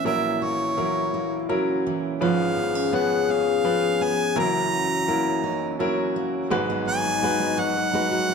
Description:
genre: acoustic folk-pop ballad.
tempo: 84 BPM.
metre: 3/4.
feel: straight.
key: unclear.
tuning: A4 = 440 Hz.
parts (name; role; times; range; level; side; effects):
clear harmonica; melody; 0.0-8.3 s; C#5 to A#5; -26 LUFS; right 2 dB; none.
mellow French horn; second line; 0.0-8.3 s; C#4 to G#4; -27 LUFS; left 10 dB; none.
bright baby grand piano; accompaniment; 0.0-8.3 s; F#1 to B4; -26 LUFS; equal; none.
picked steel-string acoustic guitar; arpeggios; 0.0-8.3 s; E3 to G#4; -28 LUFS; right 6 dB; none.
room: moderate large studio reverb, RT60 1.4 s.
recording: close, detailed microphones.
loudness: -21 LUFS.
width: side -5 dB against mid.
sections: 0.0-6.5 A section; 6.5-8.3 B section.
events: none.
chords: 0.1 F#7/A#; 2.2 C#7/G#; 4.4 F#7; 6.5 G#m7.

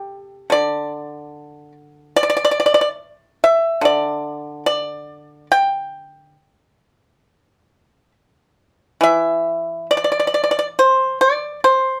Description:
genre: chinese traditional, Chinese solo plucked strings.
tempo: 65-74 BPM.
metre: 4/4.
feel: rubato.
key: unclear.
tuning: A4 = 442 Hz.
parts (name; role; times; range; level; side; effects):
pipa; solo; 0.0-12.0 s; C3 to G5; -18 LUFS; equal; none.
room: moderate studio reverb, RT60 0.6 s.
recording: none.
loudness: -18 LUFS.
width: mono.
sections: 0.0-9.0 A section; 9.0-12.0 B section.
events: none.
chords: none.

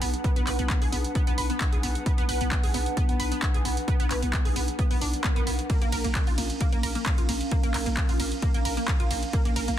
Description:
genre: driving peak-time techno.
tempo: 132 BPM.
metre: 4/4.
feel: straight.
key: unclear.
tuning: A4 = 440 Hz.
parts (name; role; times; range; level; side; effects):
wide unison pluck; riff; 0.0-9.7 s; Bb3 to B4; -32 LUFS; right 1 dB; overdrive, flanger, sidechain pumping, ping-pong delay.
growling 808-style bass; bass; 0.0-9.8 s; Bb1 to B1; -31 LUFS; equal; overdrive, sidechain pumping, low-pass filter.
punchy analog drum machine; drums; 0.0-9.8 s; handclaps, hi-hat, ride cymbal; -32 LUFS; right 1 dB; sidechain pumping on hats, sidechain pumping on cymbals.
warbly tape-like pad; texture; 0.0-9.8 s; Db4 to F#5; -34 LUFS; right 1 dB; chorus, built-in reverb, sidechain pumping.
electronic kick drum; drums; 0.2-9.4 s; none; -25 LUFS; equal; none.
swell; sound effects; 5.0-5.7 s; none; -41 LUFS; right 4 dB; none.
room: digital ambience.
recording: dense, heavily limited modern master.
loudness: -23 LUFS.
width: side -11 dB against mid.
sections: 0.0-9.8 A section.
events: swell 5.0-5.7.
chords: 0.0 Bm; 5.7 Bbm.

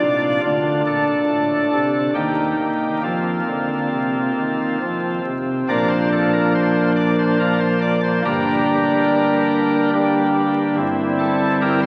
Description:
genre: classical, chorale-style piece for pipe organ.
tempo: 70 BPM.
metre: 3/4.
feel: straight.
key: Bb major.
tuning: A4 = 440 Hz.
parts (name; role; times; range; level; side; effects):
pipe organ, cornet; solo; 0.0-11.9 s; G1 to D5; -19 LUFS; equal; none.
room: wet cathedral reverb, RT60 4.3 s.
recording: very old 78 rpm record, vinyl crackle, nothing above 10.8 kHz.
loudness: -19 LUFS.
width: mono.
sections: 0.0-5.7 A section; 5.7-11.9 B section.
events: none.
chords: 0.4 D5; 2.2 Eb; 3.1 Fsus4; 4.8 F5; 5.7 Bb; 8.3 Gm; 10.8 C/G.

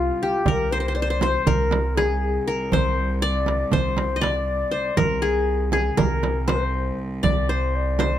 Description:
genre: Turkish makam ensemble.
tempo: 239 BPM (eighths).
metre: 9/8.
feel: straight.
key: unclear.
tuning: A4 = 440 Hz.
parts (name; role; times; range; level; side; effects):
qanun; melody; 0.0-8.2 s; F4 to Eb5; -25 LUFS; left 2 dB; none.
breathy mellow ney; second line; 0.0-8.2 s; F4 to D5; -28 LUFS; left 4 dB; none.
upright bass; bass; 0.0-8.1 s; C2; -25 LUFS; equal; none.
clear cello; drone; 0.0-8.2 s; C2; -32 LUFS; right 2 dB; none.
darbuka; percussion; 0.2-8.1 s; none; -27 LUFS; right 5 dB; none.
frame drum; percussion; 0.5-8.1 s; none; -26 LUFS; right 5 dB; none.
room: little or no reverb.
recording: close, detailed microphones.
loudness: -20 LUFS.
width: side -11 dB against mid.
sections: 0.0-8.2 A section.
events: none.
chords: none.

